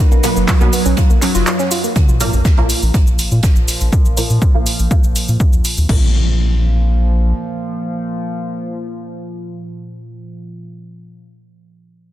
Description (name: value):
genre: melodic techno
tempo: 122 BPM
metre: 4/4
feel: straight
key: unclear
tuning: A4 = 436 Hz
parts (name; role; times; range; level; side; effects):
- evolving wavetable pad; sustained chords; 0.0-1.9 s; D#4 to Gb5; -28 LUFS; left 2 dB; chorus, built-in reverb, sidechain pumping
- woody wave-folded pluck; arpeggios; 0.0-1.9 s; Bb3 to F5; -22 LUFS; right 1 dB; chorus, sidechain pumping, tape echo
- filtered dub chord stab; stabs; 0.0-10.7 s; Bb2 to B3; -24 LUFS; right 2 dB; ensemble chorus, sidechain pumping, tape echo
- round analog bass; bass; 0.1-7.3 s; F#1 to Bb2; -15 LUFS; equal; sidechain pumping
- deep house drum kit; drums; 0.1-6.0 s; crash cymbal, handclaps, hi-hat, shaker; -21 LUFS; equal; overdrive
- wide unison lead; melody; 0.2-1.9 s; F#3; -20 LUFS; right 2 dB; lush chorus, cassette tape, sidechain pumping, tape echo
- oversized low-tuned drum kit; drums; 0.2-3.8 s; hi-hat, snare drum; -30 LUFS; right 2 dB; sidechain pumping on hats, high-pass filter on hats, high-pass filter on snare, high-pass filter on room
- electronic kick drum; drums; 0.5-6.0 s; none; -13 LUFS; equal; overdrive
- analog drone; drone; 2.8-10.6 s; Bb2 to F3; -26 LUFS; equal; chorus, sidechain pumping
- sub drop and impact; sound effects; 2.0-10.7 s; none; -25 LUFS; equal; none
room: little or no reverb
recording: dense, heavily limited modern master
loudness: -12 LUFS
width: side -13 dB against mid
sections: 0.0-2.0 A section; 2.0-5.9 B section; 5.9-9.8 C section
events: drop 0.0-2.0; break 1.5-2.0; impact 2.0-3.9; filter sweep on synth stab 2.0-5.9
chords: 0.0 B; 2.0 Bb5